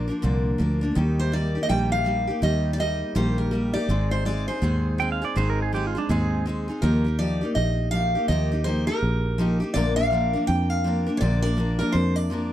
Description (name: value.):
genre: country.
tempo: 164 BPM.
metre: 4/4.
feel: swing 61% on 8ths.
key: unclear.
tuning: A4 = 440 Hz.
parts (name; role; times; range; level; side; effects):
picked steel-string acoustic guitar; melody; 0.0-12.5 s; Bb4 to G5; -28 LUFS; equal; none.
picked steel-string acoustic guitar; accompaniment; 0.0-12.5 s; Ab2 to Bb4; -26 LUFS; left 1 dB; none.
fingered electric bass; bass; 0.0-12.5 s; Ab1 to F2; -24 LUFS; equal; none.
pedal steel guitar; second line; 5.0-6.5 s; D4 to G5; -27 LUFS; right 7 dB; none.
room: light reverb.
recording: dry, close 1970s-style studio recording.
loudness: -21 LUFS.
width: side -12 dB against mid.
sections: 0.0-6.8 A section; 6.8-12.5 B section.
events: none.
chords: 0.0 Bb; 1.0 Eb; 3.9 Ab; 6.8 Ebadd9; 9.8 Bb.